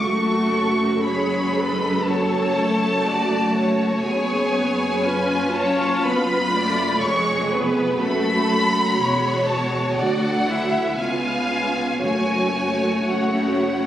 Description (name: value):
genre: classical, slow romantic movement for string orchestra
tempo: 60 BPM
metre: 4/4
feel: uneven beats, rubato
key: F# minor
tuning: A4 = 444 Hz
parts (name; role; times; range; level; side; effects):
- rich studio violin section; melody; 0.0-13.9 s; F#5 to C#6; -24 LUFS; left 1 dB; none
- warm studio violin section; second line; 0.0-13.9 s; A4 to E#5; -26 LUFS; left 1 dB; none
- warm studio viola section; accompaniment; 0.0-13.9 s; F#3 to A4; -23 LUFS; right 1 dB; none
- clear studio cello section; bass; 0.0-13.9 s; C#2 to C#3; -27 LUFS; equal; none
- clear studio double bass section; bass; 0.0-13.9 s; E1 to D2; -30 LUFS; right 1 dB; none
room: wet recital hall reverb, RT60 1.5 s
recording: recorded on a phone in the room, club reverb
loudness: -18 LUFS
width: side -11 dB against mid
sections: 0.0-13.9 A section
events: none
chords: 0.0 F#m; 4.1 C#7/F#; 8.0 F#m; 10.0 Dadd9; 11.0 C#7; 12.0 F#m